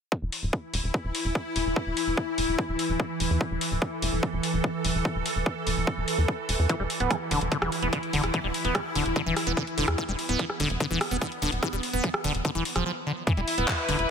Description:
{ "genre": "psychedelic trance", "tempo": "146 BPM", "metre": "4/4", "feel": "straight", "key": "unclear", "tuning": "A4 = 441 Hz", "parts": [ { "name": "evolving wavetable pad", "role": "sustained chords", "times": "0.7-14.1 s", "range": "E3 to A4", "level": "-30 LUFS", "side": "equal", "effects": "ensemble chorus, built-in reverb, sidechain pumping" }, { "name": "electronic kick drum", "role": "drums", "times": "0.1-13.8 s", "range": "none", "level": "-27 LUFS", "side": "equal", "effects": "high-pass filter on kick" }, { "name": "tight sequencer bass", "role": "bass", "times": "0.2-14.1 s", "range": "D1 to E2", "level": "-29 LUFS", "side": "equal", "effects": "none" }, { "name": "garage drum kit", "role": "drums", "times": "0.3-14.1 s", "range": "handclaps, hi-hat, rim click", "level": "-31 LUFS", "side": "left 1 dB", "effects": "none" }, { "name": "liquid acid bass", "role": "riff", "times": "6.7-14.0 s", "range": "D3 to B3", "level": "-29 LUFS", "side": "equal", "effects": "phaser, auto-pan, sidechain pumping, digital delay" }, { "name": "clear studio string section", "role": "texture", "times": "13.3-14.1 s", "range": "E4 to B5", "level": "-28 LUFS", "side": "left 2 dB", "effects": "sidechain pumping" } ], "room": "light reverb", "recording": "none", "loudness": "-25 LUFS", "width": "side -7 dB against mid", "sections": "0.1-13.3 A section", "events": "break 12.9-13.3", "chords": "0.1 E5", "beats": "| 0.12 0.53 0.94 1.35 | 1.76 2.17 2.58 3.00 | 3.41 3.82 4.23 4.64 | 5.05 5.46 5.87 6.28 | 6.70 7.11 7.52 7.93 | 8.34 8.75 9.16 9.57 | 9.98 10.39 10.80 11.21 | 11.63 12.04 12.45 12.86 | 13.27 13.68 14.09" }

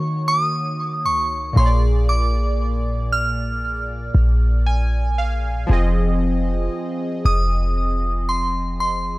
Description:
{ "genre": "contemporary R&B", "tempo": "58 BPM", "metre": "4/4", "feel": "straight", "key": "unclear", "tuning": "A4 = 437 Hz", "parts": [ { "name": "glassy synth bell", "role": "melody", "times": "0.0-9.2 s", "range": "C6 to F6", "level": "-23 LUFS", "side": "right 1 dB", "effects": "chorus, tape echo" }, { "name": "warm analog keys", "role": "accompaniment", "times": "0.0-9.2 s", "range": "Bb2 to Ab5", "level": "-25 LUFS", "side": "equal", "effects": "chorus, phaser" }, { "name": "clean 808-style bass", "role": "bass", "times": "0.0-9.2 s", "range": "F1 to Eb3", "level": "-20 LUFS", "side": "equal", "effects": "none" } ], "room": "little or no reverb", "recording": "dry, gritty hardware recording, cassette tape", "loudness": "-18 LUFS", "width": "side -20 dB against mid", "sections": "0.0-9.2 A section", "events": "synth keys fill 4.1-5.7", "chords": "0.0 Ebm7; 1.6 Bb7; 5.7 Fm7", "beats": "0.52 | 1.56 2.59 3.62 4.66 | 5.69 6.73 7.76 8.80" }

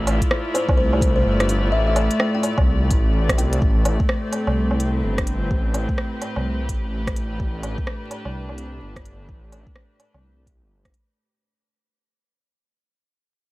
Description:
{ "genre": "future garage", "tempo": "127 BPM", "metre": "4/4", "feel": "swing 61% on 16ths", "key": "A minor", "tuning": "A4 = 435 Hz", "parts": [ { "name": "dark studio string section", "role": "sustained chords", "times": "0.0-11.2 s", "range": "A2 to D5", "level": "-26 LUFS", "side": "equal", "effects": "sidechain pumping" }, { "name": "swelling detuned saw bass", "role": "bass", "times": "0.0-10.9 s", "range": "G1 to C2", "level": "-22 LUFS", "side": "equal", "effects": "tube saturation, sidechain pumping" }, { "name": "organic electronic drum kit", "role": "drums", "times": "0.1-11.1 s", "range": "hi-hat, rim click, woodblock", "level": "-25 LUFS", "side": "right 1 dB", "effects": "overdrive" }, { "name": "electronic kick drum", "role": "drums", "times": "0.2-10.9 s", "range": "none", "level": "-22 LUFS", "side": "equal", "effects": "overdrive" }, { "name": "buzzing kalimba", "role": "melody", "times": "0.5-3.6 s", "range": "C5 to G5", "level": "-27 LUFS", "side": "left 2 dB", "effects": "vintage 12-bit sampler grit, analog delay" } ], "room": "little or no reverb", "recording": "vinyl crackle", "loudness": "-18 LUFS", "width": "side -19 dB against mid", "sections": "0.0-3.6 A section; 3.6-11.2 B section", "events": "fade-out 3.6-11.2", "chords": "0.0 Dmadd9; 3.6 Am7", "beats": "0.31 0.78 1.25 | 1.73 2.20 2.67 3.14 | 3.62 4.09 4.56 5.03 | 5.50 5.98 6.45 6.92 | 7.39 7.87 8.34 8.81 | 9.29 9.76 10.23 10.70" }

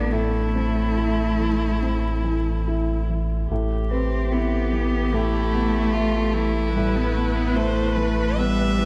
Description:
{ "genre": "neoclassical piano and strings", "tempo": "70-75 BPM", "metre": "4/4", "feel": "rubato", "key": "A minor", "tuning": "A4 = 440 Hz", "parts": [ { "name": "rich violin", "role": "melody", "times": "0.0-8.9 s", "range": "D4 to E5", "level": "-31 LUFS", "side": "equal", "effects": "delay" }, { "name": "rich cello", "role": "second line", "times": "0.0-8.9 s", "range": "G3 to C4", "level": "-28 LUFS", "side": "equal", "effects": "delay" }, { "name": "warm upright piano", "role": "accompaniment", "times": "0.0-8.9 s", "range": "A2 to E5", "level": "-30 LUFS", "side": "equal", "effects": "none" }, { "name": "sub bass with octave", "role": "bass", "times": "0.0-8.9 s", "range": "A1", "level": "-27 LUFS", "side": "equal", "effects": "none" }, { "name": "rich viola", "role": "accompaniment", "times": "3.5-8.9 s", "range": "G4 to B4", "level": "-34 LUFS", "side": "equal", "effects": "none" } ], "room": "moderate plate reverb, RT60 2.9 s", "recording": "dreamy mix soaked in reverb, vinyl crackle", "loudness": "-22 LUFS", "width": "mono", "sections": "0.0-3.5 A section; 3.5-8.9 A section", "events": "none", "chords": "0.1 Am; 3.5 Em/A; 6.8 Asus2", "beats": "| 0.12 0.97 1.82 2.66 | 3.50 4.33 5.14 5.95 | 6.76 7.56 8.37" }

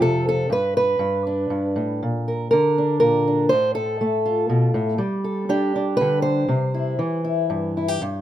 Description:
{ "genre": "folk, solo fingerstyle acoustic guitar", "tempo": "120 BPM", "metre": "3/4", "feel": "straight", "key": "C major", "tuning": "A4 = 439 Hz", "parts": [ { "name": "fingerpicked old ladder-braced acoustic guitar", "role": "solo", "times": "0.0-8.2 s", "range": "F2 to C5", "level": "-19 LUFS", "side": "equal", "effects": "none" } ], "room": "light reverb", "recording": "close, detailed microphones", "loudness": "-19 LUFS", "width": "side -12 dB against mid", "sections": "0.0-8.0 A section", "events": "none", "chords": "0.5 N.C.; 1.0 G; 2.0 Bb; 3.5 F/A; 5.0 Gsus2; 6.5 C", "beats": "0.00 | 0.50 1.00 1.50 | 2.01 2.51 3.01 | 3.51 4.00 4.50 | 5.00 5.50 5.99 | 6.49 7.00 7.51 | 8.02" }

